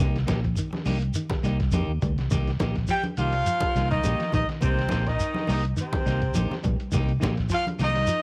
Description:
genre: afrobeat.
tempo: 104 BPM.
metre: 4/4.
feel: straight.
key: C minor.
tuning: A4 = 440 Hz.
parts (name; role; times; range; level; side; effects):
semi-hollow electric guitar; arpeggios; 0.0-8.2 s; C3 to G3; -36 LUFS; equal; none.
clean electric guitar; stabs; 0.0-8.0 s; Bb3 to G4; -37 LUFS; equal; cassette tape.
fingered electric bass; bass; 0.0-8.0 s; Bb1 to F2; -29 LUFS; equal; none.
lo-fi sampler-style drum kit; drums; 0.0-8.2 s; hi-hat, kick drum, snare drum; -33 LUFS; equal; cassette tape.
congas; percussion; 0.3-8.2 s; none; -36 LUFS; equal; none.
shekere; percussion; 0.3-8.2 s; none; -34 LUFS; equal; none.
warm trumpet; melody; 2.9-8.2 s; C5 to G5; -30 LUFS; equal; cassette tape.
bright alto saxophone; second line; 2.9-8.2 s; C4 to G4; -37 LUFS; equal; cassette tape, tape echo.
raspy baritone saxophone; second line; 2.9-8.2 s; C3 to G3; -38 LUFS; equal; cassette tape.
room: small room ambience.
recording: home recording on cassette.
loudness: -25 LUFS.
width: mono.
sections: 0.0-8.2 A section.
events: none.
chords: 0.0 Cm7.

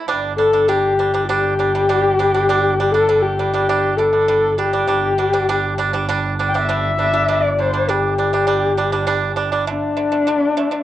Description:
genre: mongolian traditional, Mongolian folk.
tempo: 100 BPM.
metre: 4/4.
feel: straight.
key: unclear.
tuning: A4 = 440 Hz.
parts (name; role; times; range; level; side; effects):
pipa; arpeggios; 0.0-10.8 s; D3 to D4; -21 LUFS; right 6 dB; cassette tape.
rich double bass; drone; 0.1-9.7 s; G1; -25 LUFS; right 2 dB; cassette tape.
dark horsehead fiddle; melody; 0.4-10.8 s; D4 to G5; -17 LUFS; left 3 dB; cassette tape.
room: moderate spring reverb, RT60 1.4 s.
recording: home recording on cassette.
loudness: -15 LUFS.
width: side -13 dB against mid.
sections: 0.1-9.7 A section; 9.7-10.8 B section.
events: none.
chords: 0.1 G5; 9.7 D5.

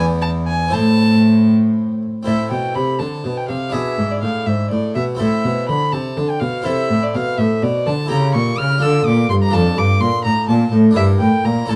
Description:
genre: classical, baroque-style sonata movement with continuo.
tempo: 82 BPM (dotted quarters).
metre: 6/8.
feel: rubato.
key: A minor, D minor from 8.1 s.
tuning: A4 = 441 Hz.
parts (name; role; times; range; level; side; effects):
warm violin; melody; 0.0-11.8 s; D5 to F6; -24 LUFS; equal; none.
harpsichord; accompaniment; 0.0-11.8 s; E2 to D5; -23 LUFS; equal; none.
rich cello; bass; 0.0-11.8 s; E2 to D3; -19 LUFS; equal; none.
room: light reverb.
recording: dark, warm production.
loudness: -17 LUFS.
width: mono.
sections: 0.0-2.3 A section; 2.3-11.8 B section.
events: none.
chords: 0.0 E5; 0.7 Am; 3.7 E7; 5.2 Am; 8.1 A7; 8.8 Dm; 9.5 Dm/F; 11.0 Em7b5/G.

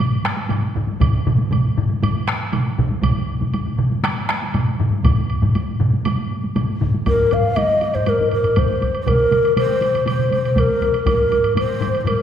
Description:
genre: japanese traditional, taiko drum ensemble.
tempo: 119 BPM.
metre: 4/4.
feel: straight.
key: unclear.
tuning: A4 = 438 Hz.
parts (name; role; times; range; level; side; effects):
taiko ensemble; percussion; 0.0-12.2 s; none; -22 LUFS; left 2 dB; none.
taiko ensemble; percussion; 0.0-10.7 s; none; -22 LUFS; right 2 dB; none.
taiko ensemble; percussion; 0.2-12.2 s; none; -26 LUFS; equal; none.
woodblock; percussion; 0.5-12.2 s; none; -31 LUFS; right 4 dB; none.
taiko ensemble; percussion; 1.0-11.2 s; none; -23 LUFS; right 1 dB; none.
breathy mellow long shakuhachi; melody; 7.1-12.2 s; Bb4 to F5; -17 LUFS; left 1 dB; none.
room: wet scoring stage reverb, RT60 1.6 s.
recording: recorded in a church or concert hall.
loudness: -16 LUFS.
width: side -9 dB against mid.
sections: 0.0-7.1 A section; 7.1-12.2 B section.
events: none.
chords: none.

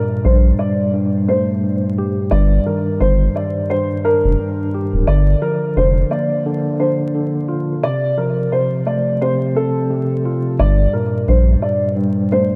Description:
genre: hip hop, boom-bap hip-hop.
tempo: 87 BPM.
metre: 4/4.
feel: swing 59% on 16ths.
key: G minor.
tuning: A4 = 440 Hz.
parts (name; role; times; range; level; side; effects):
dark upright piano; melody; 0.0-12.5 s; A4 to D5; -22 LUFS; equal; analog chorus, high-pass filter, low-pass filter, delay.
tine electric piano; accompaniment; 0.0-12.6 s; G2 to G4; -21 LUFS; equal; cassette tape, high-pass filter, low-pass filter.
saturated sub bass; bass; 0.2-6.0, 10.6-11.6 s; D1 to Bb1; -16 LUFS; equal; none.
room: light reverb, small room ambience.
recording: vinyl crackle.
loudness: -17 LUFS.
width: mono.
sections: 0.0-10.6 A section; 10.6-12.6 A section.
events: none.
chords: 0.0 Gmadd9; 2.3 Ebmaj7/G; 5.1 Bb; 7.8 F; 10.6 Gmadd9.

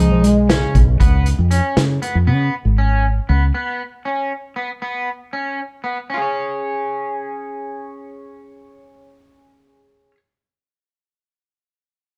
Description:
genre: progressive instrumental, band music in an uneven meter.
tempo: 235 BPM (eighths).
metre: 5/8.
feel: straight.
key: Db mixolydian.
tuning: A4 = 439 Hz.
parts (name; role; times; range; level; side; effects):
dark bass clarinet; melody; 0.0-0.9 s; Db3 to Ab3; -18 LUFS; equal; none.
breathy flugelhorn; second line; 0.0-0.7 s; Ab3; -26 LUFS; equal; digital delay.
electric guitar at the edge of break-up; arpeggios; 0.0-10.2 s; Cb4 to Db5; -26 LUFS; equal; lush chorus.
woody fretless electric bass; bass; 0.0-3.5 s; Ab1 to Db3; -18 LUFS; equal; lush chorus.
vintage drum kit; drums; 0.2-2.1 s; hi-hat, kick drum, snare drum; -20 LUFS; equal; none.
room: light reverb.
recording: dark, warm production.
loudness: -18 LUFS.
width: mono.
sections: 1.0-6.1 A section; 6.1-8.6 B section.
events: none.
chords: 0.0 Db7; 3.5 Cbsus2; 6.1 Db5.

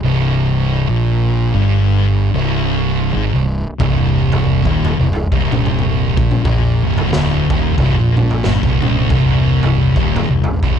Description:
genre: stoner and doom metal.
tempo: 91 BPM.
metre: 4/4.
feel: swing 58% on 8ths.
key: C minor.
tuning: A4 = 440 Hz.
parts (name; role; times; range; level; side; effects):
thick fuzz guitar; riff; 0.0-10.8 s; C2 to Bb2; -18 LUFS; left 7 dB; distortion.
thick fuzz guitar; riff; 0.0-10.8 s; C2 to Bb2; -18 LUFS; right 8 dB; distortion.
fuzz fingered electric bass; bass; 0.0-10.8 s; C1 to Bb1; -20 LUFS; equal; overdrive.
raw garage drum kit; drums; 3.8-10.8 s; kick drum, snare drum, toms; -18 LUFS; equal; none.
room: light reverb, studio ambience.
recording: dark, warm production.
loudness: -13 LUFS.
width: side -8 dB against mid.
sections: 0.0-10.8 A section.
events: none.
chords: 0.0 Cm.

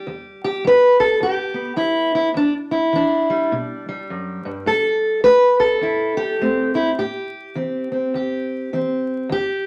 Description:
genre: acoustic country blues, solo or duo.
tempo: 104 BPM.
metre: 4/4.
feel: swing 60% on 8ths.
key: unclear.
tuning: A4 = 437 Hz.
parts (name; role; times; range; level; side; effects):
fingerpicked steel-string acoustic guitar; solo; 0.0-9.7 s; E2 to B4; -19 LUFS; equal; none.
room: moderate studio reverb, RT60 0.8 s.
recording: vinyl crackle.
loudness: -19 LUFS.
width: mono.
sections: 0.0-9.7 A section.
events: none.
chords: 0.0 Em7; 4.7 Am7.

